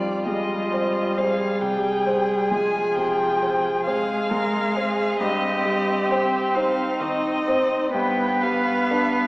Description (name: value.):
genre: classical, slow romantic movement for piano quartet.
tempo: 44 BPM (dotted quarters).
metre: 12/8.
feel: rubato.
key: unclear.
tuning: A4 = 440 Hz.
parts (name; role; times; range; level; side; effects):
rich violin; melody; 0.0-9.3 s; D5 to Ab5; -26 LUFS; left 2 dB; none.
clear cello; second line; 0.0-9.3 s; Eb4 to B4; -25 LUFS; right 1 dB; none.
clear concert grand piano; accompaniment; 0.0-9.3 s; F2 to C5; -25 LUFS; equal; none.
rich viola; accompaniment; 0.0-9.3 s; F3 to C4; -26 LUFS; equal; none.
room: wet concert hall reverb, RT60 2.1 s.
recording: heard from further back in the room, small speaker sound.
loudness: -20 LUFS.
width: side -22 dB against mid.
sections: 0.0-9.3 A section.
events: none.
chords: 0.0 Fm; 5.2 Cm/G; 8.0 G7.